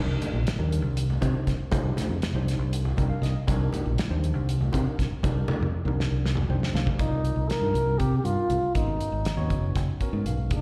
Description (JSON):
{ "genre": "electric jazz fusion", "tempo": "239 BPM (eighths)", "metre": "7/8", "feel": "straight", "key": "C minor", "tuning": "A4 = 440 Hz", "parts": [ { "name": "tine electric piano", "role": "accompaniment", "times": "0.0-10.6 s", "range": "Bb3 to G5", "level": "-38 LUFS", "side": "equal", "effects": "slapback echo" }, { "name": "fingered electric bass", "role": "bass", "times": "0.0-10.6 s", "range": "F1 to C3", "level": "-28 LUFS", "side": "equal", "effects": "none" }, { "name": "damped 70s drum kit", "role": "drums", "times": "0.2-10.6 s", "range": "hi-hat, kick drum, snare drum, toms", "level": "-32 LUFS", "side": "equal", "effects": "none" }, { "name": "congas", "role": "percussion", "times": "0.2-7.0 s", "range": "none", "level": "-35 LUFS", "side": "equal", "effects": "none" }, { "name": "trumpet with bucket mute", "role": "melody", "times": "7.0-10.6 s", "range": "Eb4 to Bb4", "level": "-31 LUFS", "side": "equal", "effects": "slapback echo" } ], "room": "small room ambience", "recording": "live gig heard through the venue's PA, recital hall reverb", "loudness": "-26 LUFS", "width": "mono", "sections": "0.0-7.0 A section; 7.0-10.6 B section", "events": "tine electric piano fill 2.7-3.5, 6.2-7.0, 9.8-10.5; drum fill 5.5-7.0", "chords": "0.0 Cm9; 7.0 Cm11; 8.8 Abm11", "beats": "0.22 0.47 0.72 0.97 1.22 1.47 | 1.73 1.98 2.23 2.48 2.73 2.98 3.23 | 3.48 3.73 3.98 4.24 4.49 4.74 4.99 | 5.24 5.49 5.74 5.99 6.24 6.49 6.75 | 7.00 7.25 7.50 7.75 8.00 8.25 8.50 | 8.76 9.01 9.26 9.51 9.76 10.01 10.26 | 10.52" }